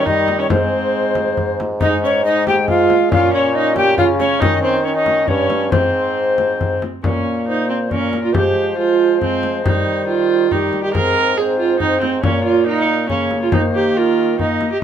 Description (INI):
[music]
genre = classical, renaissance-style consort dance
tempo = 138 BPM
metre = 3/4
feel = straight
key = Bb dorian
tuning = A4 = 440 Hz
[part]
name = mellow alto recorder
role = melody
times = 0.0-14.8 s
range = G4 to G5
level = -20 LUFS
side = left 3 dB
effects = none
[part]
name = warm viola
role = second line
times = 0.0-14.8 s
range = C4 to Bb4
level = -18 LUFS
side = right 5 dB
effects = none
[part]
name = clear trombone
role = accompaniment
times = 0.0-14.7 s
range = G3 to Db4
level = -23 LUFS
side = left 3 dB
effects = none
[part]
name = warm bassoon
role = bass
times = 0.0-14.7 s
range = G2 to F3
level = -22 LUFS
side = right 1 dB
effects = none
[part]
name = frame drum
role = percussion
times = 0.1-14.8 s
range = none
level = -22 LUFS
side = left 2 dB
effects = none
[sound]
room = moderate stone room reverb, RT60 1.0 s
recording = none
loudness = -14 LUFS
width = side -9 dB against mid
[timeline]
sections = 0.0-7.0 A section; 7.0-14.8 B section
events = none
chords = 0.0 Eb; 0.5 Ab; 3.1 Bbm; 4.4 Eb7; 5.7 Ab; 7.0 Bbm; 8.3 Fm; 9.6 Eb; 10.9 Ab; 12.2 Bbm; 13.5 Eb5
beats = 0.06 | 0.50 0.94 1.38 | 1.82 2.25 2.69 | 3.12 3.55 3.98 | 4.41 4.84 5.28 | 5.72 6.16 6.60 | 7.04 7.47 7.91 | 8.34 8.77 9.21 | 9.64 10.07 10.50 | 10.93 11.37 11.79 | 12.23 12.66 13.09 | 13.52 13.96 14.39 | 14.82